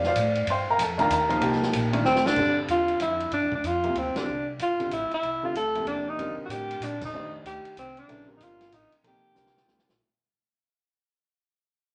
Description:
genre	modal jazz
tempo	189 BPM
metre	3/4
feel	swing 63% on 8ths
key	G minor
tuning	A4 = 439 Hz
part	warm concert grand piano	accompaniment	0.0-9.9 s	C3 to C6	-29 LUFS	equal	none
part	upright bass	bass	0.0-10.0 s	G1 to Bb2	-36 LUFS	equal	none
part	vintage drum kit	drums	0.0-10.0 s	crash cymbal, hi-hat, kick drum, ride cymbal, snare drum	-37 LUFS	equal	none
part	breathy alto saxophone	melody	2.1-9.9 s	C4 to A4	-28 LUFS	equal	none
room	wet club reverb, RT60 0.8 s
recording	nothing above 10.4 kHz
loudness	-26 LUFS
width	mono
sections	0.0-2.4 A section; 2.4-10.0 B section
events	drum fill 2.0-2.4, 9.4-10.0; fade-out 2.4-10.0; band accent 4.1, 7.0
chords	0.0 Cm11; 2.4 G13sus4; 6.2 F13sus4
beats	0.15 | 0.47 0.79 1.10 | 1.42 1.73 2.05 | 2.37 2.68 3.00 | 3.32 3.63 3.95 | 4.27 4.59 4.91 | 5.22 5.54 5.86 | 6.18 6.50 6.81 | 7.13 7.45 7.77 | 8.08 8.40 8.72 | 9.04 9.36 9.67

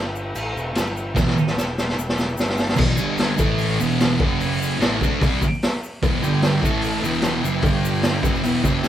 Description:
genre	garage rock duo or trio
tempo	148 BPM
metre	4/4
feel	straight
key	E minor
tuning	A4 = 439 Hz
part	combo organ	sustained chords	0.0-2.8, 6.2-8.9 s	G4 to A5	-32 LUFS	left 1 dB	none
part	fuzz picked electric bass	bass	0.0-8.9 s	E1 to D2	-30 LUFS	equal	overdrive
part	tube shaker	percussion	0.2-8.9 s	none	-40 LUFS	left 8 dB	none
part	raw garage drum kit	drums	0.4-8.9 s	crash cymbal, hi-hat, kick drum, snare drum	-22 LUFS	equal	none
part	thick fuzz guitar	riff	1.1-8.9 s	E2 to D4	-20 LUFS	right 1 dB	distortion
room	moderate studio reverb, RT60 0.5 s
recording	band playing live in one room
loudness	-18 LUFS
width	side -11 dB against mid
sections	0.0-2.8 A section; 2.8-8.9 B section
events	drum fill 1.2-2.8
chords	0.0 Em; 2.8 E5; 3.0 G5; 3.4 A5; 3.8 E5; 4.2 F#5; 4.8 Em; 6.2 G5; 6.6 A5; 7.0 Em; 7.6 G5; 8.2 Em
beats	0.34 0.75 | 1.16 1.57 1.97 2.38 | 2.79 3.19 3.60 4.00 | 4.41 4.81 5.21 5.62 | 6.02 6.43 6.83 7.24 | 7.64 8.04 8.45 8.85

